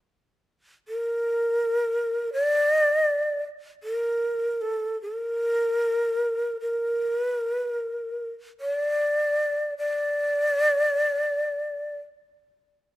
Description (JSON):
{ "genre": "japanese traditional, Japanese chamber music", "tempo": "74-82 BPM", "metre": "4/4", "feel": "rubato", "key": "unclear", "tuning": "A4 = 440 Hz", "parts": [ { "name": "breathy mellow shakuhachi", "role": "solo", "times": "0.9-12.0 s", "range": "A4 to D5", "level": "-23 LUFS", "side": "equal", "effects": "none" } ], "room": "light reverb", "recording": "close, detailed microphones", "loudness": "-23 LUFS", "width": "side -17 dB against mid", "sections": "0.0-13.0 A section", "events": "none", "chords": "none" }